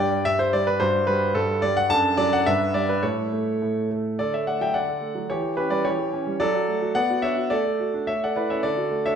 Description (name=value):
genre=classical-period piano sonatina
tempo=108 BPM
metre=2/4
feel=straight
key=D major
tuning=A4 = 440 Hz
part: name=clear concert grand piano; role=solo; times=0.0-9.2 s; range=F#2 to A5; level=-21 LUFS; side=equal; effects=none
room=wet recital hall reverb, RT60 1.4 s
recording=none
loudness=-21 LUFS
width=side -7 dB against mid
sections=0.0-4.2 A section; 4.2-9.2 B section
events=none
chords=0.0 G5; 0.8 D/G; 1.9 D/F#; 2.5 G; 3.0 N.C.; 4.2 D; 5.3 C#dim/E; 6.4 D/F#; 7.0 Bm; 7.5 D/A; 8.1 A; 8.6 D